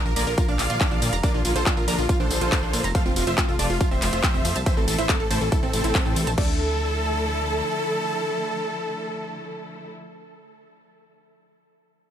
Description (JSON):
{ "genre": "uplifting trance", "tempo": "140 BPM", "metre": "4/4", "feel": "straight", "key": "D minor", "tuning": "A4 = 440 Hz", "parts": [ { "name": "big supersaw lead", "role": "melody", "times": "0.0-9.9 s", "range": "C4 to F5", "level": "-28 LUFS", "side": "right 1 dB", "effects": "sidechain pumping, dub echo" }, { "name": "plucky unison lead", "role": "second line", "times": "0.0-9.9 s", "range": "F4 to F5", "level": "-32 LUFS", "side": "equal", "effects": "sidechain pumping, dub echo" }, { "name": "analog pluck", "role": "arpeggios", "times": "0.1-6.6 s", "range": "C4 to Bb5", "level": "-32 LUFS", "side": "right 4 dB", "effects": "chorus, sidechain pumping, dub echo" }, { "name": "plucky analog bass", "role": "bass", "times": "0.1-7.6 s", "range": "F1 to Bb2", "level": "-27 LUFS", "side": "equal", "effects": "sidechain pumping" }, { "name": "big-room dance drum kit", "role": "drums", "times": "0.1-6.5 s", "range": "crash cymbal, handclaps, hi-hat, ride cymbal, tambourine", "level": "-28 LUFS", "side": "left 1 dB", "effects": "overdrive, small room ambience" }, { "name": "bright studio string section", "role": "sustained chords", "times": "0.2-9.9 s", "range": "C3 to F4", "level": "-31 LUFS", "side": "left 2 dB", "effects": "vintage 12-bit sampler grit, sidechain pumping" }, { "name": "electronic kick drum", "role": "drums", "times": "0.4-6.5 s", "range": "none", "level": "-23 LUFS", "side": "equal", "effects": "overdrive, small room ambience" } ], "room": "little or no reverb", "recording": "none", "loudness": "-20 LUFS", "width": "side -10 dB against mid", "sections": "0.0-6.4 A section; 6.4-9.8 B section", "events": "drop 0.0-6.4", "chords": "0.0 Bb; 2.9 F; 4.7 Am; 6.4 Dmadd9", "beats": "0.38 0.81 | 1.24 1.66 2.09 2.52 | 2.95 3.38 3.81 4.24 | 4.66 5.09 5.52 5.95 | 6.38 6.81 7.24 7.66 | 8.09 8.52 8.95 9.38" }